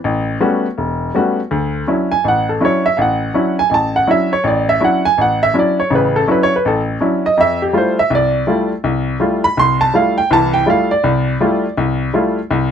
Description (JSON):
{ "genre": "jazz", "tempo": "164 BPM", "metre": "4/4", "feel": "swing 63% on 8ths", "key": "unclear", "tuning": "A4 = 440 Hz", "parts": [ { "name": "clear upright piano", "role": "solo", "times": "0.0-12.7 s", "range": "E1 to C6", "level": "-13 LUFS", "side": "equal", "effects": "none" } ], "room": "little or no reverb", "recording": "close, detailed microphones", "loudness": "-13 LUFS", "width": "side -8 dB against mid", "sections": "0.0-1.5 A section; 1.5-12.7 B section", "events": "none", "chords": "0.0 A13; 1.5 Dmaj9; 7.4 Fmaj9" }